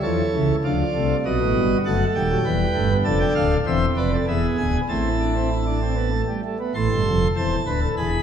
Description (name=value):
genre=classical, baroque-style 4-part fugue for pipe organ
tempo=99 BPM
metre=3/4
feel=straight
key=A minor from 3.1 s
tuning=A4 = 442 Hz
part: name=pipe organ, principal chorus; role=solo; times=0.0-8.2 s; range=D1 to C6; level=-19 LUFS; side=equal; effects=none
room=wet recital hall reverb, RT60 1.3 s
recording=dark, warm production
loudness=-19 LUFS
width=side -8 dB against mid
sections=0.0-6.7 A section; 6.7-8.2 B section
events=none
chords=0.0 A; 0.6 Dm; 1.2 B7; 2.5 Em; 3.1 Dm/F; 3.7 Am/E; 4.3 E7; 4.9 Am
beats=0.02 0.64 | 1.24 1.85 2.45 | 3.06 3.66 4.27 | 4.88 5.50 6.12 | 6.74 7.36 7.96